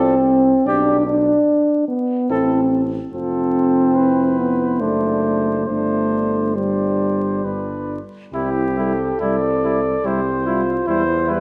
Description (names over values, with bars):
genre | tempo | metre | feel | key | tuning
classical, brass quintet | 67-74 BPM | 3/4 | rubato | C major | A4 = 442 Hz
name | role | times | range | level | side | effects
dark cornet | melody | 0.0-11.4 s | G4 to D5 | -29 LUFS | equal | none
dark trumpet | second line | 0.0-11.4 s | E4 to C5 | -29 LUFS | equal | none
mellow euphonium | accompaniment | 0.0-11.4 s | G3 to D4 | -20 LUFS | equal | none
warm French horn | accompaniment | 0.0-11.4 s | D4 to A4 | -27 LUFS | equal | none
clear bass trombone | bass | 0.0-11.4 s | F1 to E2 | -28 LUFS | equal | none
room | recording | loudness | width
moderate concert hall reverb, RT60 1.8 s | vinyl crackle | -19 LUFS | mono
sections
0.0-8.3 A section; 8.3-11.4 B section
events
none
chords
0.0 Dm7/C; 0.7 G/B (rootless); 2.3 Am; 3.1 F; 4.8 D7/F#; 5.7 Gsus4; 7.5 G; 8.3 C; 10.9 Em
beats
| 0.67 1.48 2.30 | 3.13 3.96 4.81 | 5.67 6.57 7.46 | 8.34 9.22 10.05 | 10.88